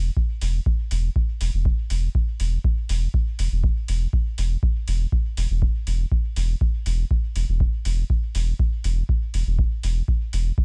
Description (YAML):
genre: dub techno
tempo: 121 BPM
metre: 4/4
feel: straight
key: unclear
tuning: A4 = 439 Hz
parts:
  - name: soft dub sub bass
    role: bass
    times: 0.0-10.5 s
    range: E1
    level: -24 LUFS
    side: equal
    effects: sidechain pumping
  - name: electronic kick drum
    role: drums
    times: 0.2-10.6 s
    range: none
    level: -24 LUFS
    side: equal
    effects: none
  - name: electronic hi-hat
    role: drums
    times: 0.4-10.4 s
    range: none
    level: -39 LUFS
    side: equal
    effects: none
room: digital ambience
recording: dry, gritty hardware recording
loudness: -23 LUFS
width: mono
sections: 0.0-10.6 A section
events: none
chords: none